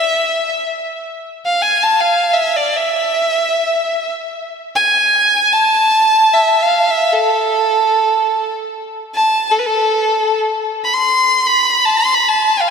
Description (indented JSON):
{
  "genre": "Arabic maqam ensemble",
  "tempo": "free time",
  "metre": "none",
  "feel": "none",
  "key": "A maqam nahawand",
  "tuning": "A4 = 440 Hz",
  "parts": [
    { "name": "rich violin", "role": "solo", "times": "0.0-12.7 s", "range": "A4 to C6", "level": "-12 LUFS", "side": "equal", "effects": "ping-pong delay" }
  ],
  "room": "wet lush hall reverb, RT60 2.8 s",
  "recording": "dreamy mix soaked in reverb",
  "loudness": "-12 LUFS",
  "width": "side -6 dB against mid",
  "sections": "0.0-10.5 A section; 10.5-12.7 A section",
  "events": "none",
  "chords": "none"
}